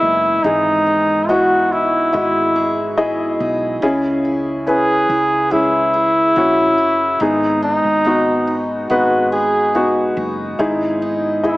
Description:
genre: pop ballad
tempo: 71 BPM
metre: 4/4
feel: straight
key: unclear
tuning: A4 = 439 Hz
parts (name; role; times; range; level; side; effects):
- warm flugelhorn; melody; 0.0-11.6 s; D#4 to G#4; -15 LUFS; equal; none
- warm concert grand piano; accompaniment; 0.0-11.6 s; G#2 to D#5; -18 LUFS; left 1 dB; none
- picked steel-string acoustic guitar; arpeggios; 0.0-11.6 s; G#2 to G#4; -26 LUFS; right 2 dB; none
- hollow-body short-scale fingered electric bass; bass; 0.0-11.6 s; F#1 to C#2; -32 LUFS; equal; none
room: moderate lush hall reverb, RT60 2.5 s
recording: small speaker sound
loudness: -14 LUFS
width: side -19 dB against mid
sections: 0.0-11.6 A section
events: none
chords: 0.0 Emaj7; 3.8 C#m; 7.2 G#m; 10.6 Emaj7

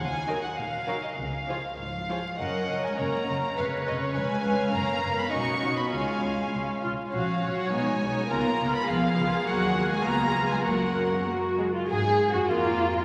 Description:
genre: quick classical-period movement for string orchestra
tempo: 101 BPM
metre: 2/4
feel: straight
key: F# major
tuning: A4 = 439 Hz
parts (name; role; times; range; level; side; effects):
- warm chamber violin section; melody; 0.0-13.0 s; F4 to C#6; -33 LUFS; equal; none
- dark chamber cello section; bass; 0.0-13.0 s; G#2 to Ab4; -32 LUFS; equal; none
- dark chamber double bass section; bass; 0.0-13.0 s; E#1 to Ab2; -38 LUFS; equal; none
- warm chamber violin section; second line; 0.3-13.0 s; F4 to E#5; -36 LUFS; equal; none
- warm studio viola section; accompaniment; 0.3-13.0 s; E#3 to B4; -33 LUFS; equal; none
room: wet church reverb, RT60 3.4 s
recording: vinyl crackle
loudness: -27 LUFS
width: mono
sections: 0.0-2.4 A section; 2.4-11.9 B section; 11.9-13.0 A section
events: none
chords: 0.0 D#m; 1.2 C#; 2.4 F#; 3.6 C#7/E#; 4.7 F#; 5.3 B; 5.9 C#; 7.1 F#/A#; 7.7 G#m/B; 8.3 C#6; 9.5 D#m; 10.1 C#7; 10.7 F#; 11.9 Gbsus2; 12.5 Bb5/F

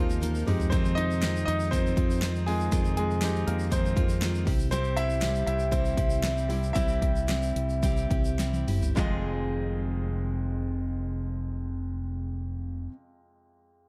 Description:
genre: piano-driven pop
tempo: 102-120 BPM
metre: 4/4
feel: straight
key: F minor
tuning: A4 = 440 Hz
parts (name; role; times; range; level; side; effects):
- clear concert grand piano; accompaniment; 0.0-13.9 s; F2 to E5; -34 LUFS; equal; none
- picked steel-string acoustic guitar; riff; 0.0-13.0 s; F2 to Ab4; -36 LUFS; equal; none
- fingered electric bass; bass; 0.0-12.9 s; F1 to F2; -32 LUFS; equal; none
- tube shaker; percussion; 0.1-9.2 s; none; -48 LUFS; equal; none
- pop drum kit; drums; 0.2-9.1 s; handclaps, hi-hat, kick drum, snare drum, toms; -31 LUFS; equal; none
room: small room ambience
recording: dark, warm production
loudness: -28 LUFS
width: mono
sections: 0.0-9.0 A section; 9.0-13.7 B section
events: grand piano solo 0.0-9.0; drum fill 0.2-0.7, 8.4-9.0; slowing down 4.7-9.0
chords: 0.5 Fm7; 4.5 C; 9.0 Fm7

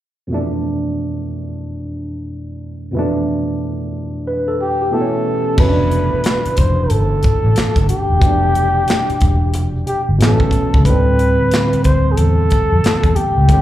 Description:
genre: R&B, neo-soul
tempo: 91 BPM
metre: 4/4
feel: swing 64% on 16ths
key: unclear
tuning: A4 = 440 Hz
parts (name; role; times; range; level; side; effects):
- barky tine electric piano; accompaniment; 0.3-13.6 s; F2 to B4; -19 LUFS; right 1 dB; overdrive, wide subtle chorus
- breathy flugelhorn; melody; 4.6-13.6 s; G4 to C5; -18 LUFS; equal; slapback echo
- vintage muted fingered electric bass; bass; 5.6-13.6 s; E1 to F2; -15 LUFS; equal; none
- tight funk drum kit; drums; 5.6-13.6 s; crash cymbal, handclaps, hi-hat, kick drum, snare drum; -16 LUFS; equal; none
room: light reverb, studio reverb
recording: live gig heard through the venue's PA, club reverb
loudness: -13 LUFS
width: side -13 dB against mid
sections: 0.3-5.6 A section; 5.6-13.6 B section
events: none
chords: 0.3 Fmaj7#11; 4.9 A; 5.6 Fmaj9#11; 10.2 A; 10.9 D7sus2

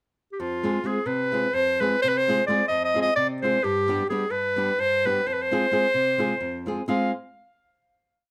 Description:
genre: balkan folk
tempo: 259 BPM (eighths)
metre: 7/8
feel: straight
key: F dorian sharp4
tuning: A4 = 442 Hz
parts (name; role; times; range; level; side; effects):
- bright clarinet; melody; 0.3-7.1 s; F4 to F5; -25 LUFS; equal; none
- nylon-string guitar; accompaniment; 0.4-7.1 s; F2 to Ab4; -30 LUFS; equal; none
room: moderate small room ambience, RT60 0.5 s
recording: none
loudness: -24 LUFS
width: mono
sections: 0.0-0.4 pickup bar; 0.4-6.9 A section; 6.9-8.3 final chord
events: none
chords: 0.4 Fm; 3.6 G; 5.3 Fm

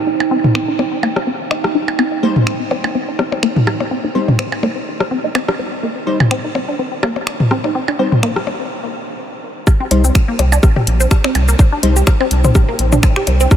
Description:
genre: minimal techno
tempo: 125 BPM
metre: 4/4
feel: swing 55% on 16ths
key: C minor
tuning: A4 = 444 Hz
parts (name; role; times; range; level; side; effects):
- rubbery square bass; bass; 0.0-13.5 s; Bb1 to C2; -17 LUFS; equal; sidechain pumping, high-pass filter
- deep dark ambient pad; texture; 0.0-13.6 s; Eb4 to G5; -24 LUFS; right 5 dB; chorus, built-in reverb, sidechain pumping
- resonant blip pluck; riff; 0.1-13.4 s; Bb3 to G4; -20 LUFS; left 1 dB; chorus, phaser, sidechain pumping, ping-pong delay
- minimal click drum kit; percussion; 0.2-13.6 s; percussion blips, rim click, toms; -19 LUFS; left 1 dB; analog delay
- punchy analog drum machine; drums; 0.6-13.6 s; cabasa, finger snaps, hi-hat; -25 LUFS; left 1 dB; overdrive, low-pass filter on snare, low-pass filter on perc, low-pass filter on hats
- wavetable chord stab; stabs; 2.2-11.9 s; G3 to C5; -25 LUFS; left 2 dB; analog delay
- electronic kick drum; drums; 9.7-13.6 s; none; -11 LUFS; equal; none
room: light reverb, digital ambience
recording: none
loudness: -13 LUFS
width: side -9 dB against mid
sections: 0.0-9.7 A section; 9.7-13.6 B section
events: filter sweep on synth arpeggio sound 0.0-9.7; break 8.7-9.7; drop 9.7-13.6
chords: 0.0 Cm

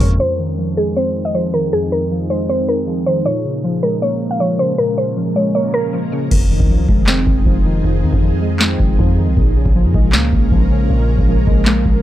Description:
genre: hip hop, trap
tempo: 157 BPM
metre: 4/4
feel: half-time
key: F minor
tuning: A4 = 440 Hz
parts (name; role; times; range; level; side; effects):
- mallet-like synth pluck; melody; 0.0-6.3 s; Ab4 to F5; -18 LUFS; equal; chorus, tape echo
- warbly lo-fi synth keys; accompaniment; 0.0-12.0 s; F2 to C4; -19 LUFS; left 1 dB; chorus, low-pass filter
- ethereal airy pad; sustained chords; 0.0-12.0 s; F3 to Bb4; -24 LUFS; right 2 dB; ensemble chorus, built-in reverb
- long sustained 808-style bass; bass; 0.0-0.2, 6.3-12.0 s; F1 to F2; -16 LUFS; equal; none
- booming analog drum machine; drums; 0.0-0.2, 6.3-12.0 s; crash cymbal, handclaps, hi-hat, kick drum, snare drum; -15 LUFS; equal; none
room: little or no reverb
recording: dry, gritty hardware recording, low-pass filter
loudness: -13 LUFS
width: side -13 dB against mid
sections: 0.2-6.3 A section; 6.3-12.0 B section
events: filter sweep 0.2-6.3; hi-hats muted 6.3-12.0; filter sweep on synth keys 6.3-12.0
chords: 0.2 Fm7; 3.3 Bbm7; 6.3 Fm7; 9.4 Bbm7

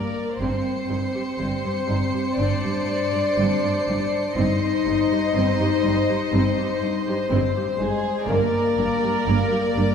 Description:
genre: cinematic, suspense film score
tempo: 61 BPM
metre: 4/4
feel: straight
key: unclear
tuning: A4 = 440 Hz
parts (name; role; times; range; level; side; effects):
- warm symphonic violin section; melody; 0.0-9.9 s; C5 to D5; -29 LUFS; left 4 dB; none
- warm studio violin section; second line; 0.0-9.9 s; Ab4 to Eb5; -30 LUFS; right 1 dB; none
- dark symphonic viola section; accompaniment; 0.0-9.9 s; Bb3 to C5; -29 LUFS; right 2 dB; none
- dark French horn section; sustained chords; 0.0-9.9 s; Ab3 to Eb4; -24 LUFS; left 3 dB; none
- rich symphonic cello section; riff; 0.0-9.9 s; G2 to G3; -30 LUFS; right 1 dB; none
- rich symphonic double bass section; bass; 0.4-9.8 s; G1; -30 LUFS; right 2 dB; none
- warm symphonic cello section; bass; 0.4-9.8 s; G2; -28 LUFS; right 2 dB; none
- warm symphonic violin section; texture; 0.4-7.8 s; C7 to C#7; -36 LUFS; left 1 dB; none
room: wet scoring stage reverb, RT60 1.9 s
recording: heard from further back in the room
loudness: -20 LUFS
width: side -7 dB against mid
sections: 0.0-9.9 A section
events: none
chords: 0.4 Cm/G; 8.3 Gm

